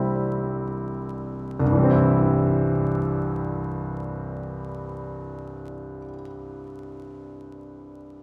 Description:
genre	classical, romantic nocturne for solo piano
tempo	free time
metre	none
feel	none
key	C major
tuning	A4 = 440 Hz
part	bright grand piano	solo	0.0-8.2 s	C1 to C6	-26 LUFS	equal	none
room	wet church reverb, RT60 3.4 s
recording	recorded in a church or concert hall, vinyl crackle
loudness	-25 LUFS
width	mono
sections	0.0-1.6 A section; 1.6-8.2 B section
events	slowing down 0.0-1.6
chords	0.0 C

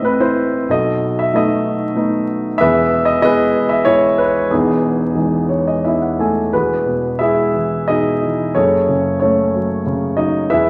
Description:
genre	classical, lyrical solo piano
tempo	92 BPM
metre	3/4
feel	uneven beats, rubato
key	E major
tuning	A4 = 440 Hz
part	dark baby grand piano	solo	0.0-10.7 s	E1 to G#5	-16 LUFS	equal	none
room	moderate concert hall reverb, RT60 2.0 s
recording	vinyl crackle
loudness	-16 LUFS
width	mono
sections	0.0-6.5 A section; 6.5-10.7 B section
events	grand piano fill 5.2-6.5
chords	0.0 Amadd9; 0.7 B7; 2.6 E; 4.5 Emaj7; 6.5 Eadd9; 8.5 F#madd9

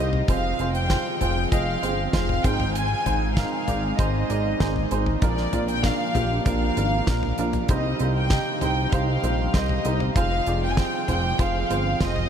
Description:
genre	piano-driven pop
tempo	97 BPM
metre	4/4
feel	straight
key	unclear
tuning	A4 = 440 Hz
part	warm studio violin section	melody	0.0-12.3 s	D5 to Ab5	-27 LUFS	left 1 dB	none
part	clear upright piano	accompaniment	0.0-12.3 s	Ab2 to Eb5	-28 LUFS	right 4 dB	none
part	airy breathy pad	sustained chords	0.0-12.3 s	C3 to Ab4	-32 LUFS	equal	chorus
part	chorused synth bass	bass	0.0-12.3 s	F1 to C2	-26 LUFS	equal	none
part	damped 70s drum kit	drums	0.1-12.3 s	hi-hat, kick drum, snare drum, toms	-27 LUFS	equal	none
room	moderate huge ambient reverb, RT60 8.2 s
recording	dreamy mix soaked in reverb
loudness	-21 LUFS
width	side -8 dB against mid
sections	0.0-12.3 A section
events	none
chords	0.3 Fm; 2.4 Ab; 5.2 Bb; 7.7 Cm; 10.2 Fm

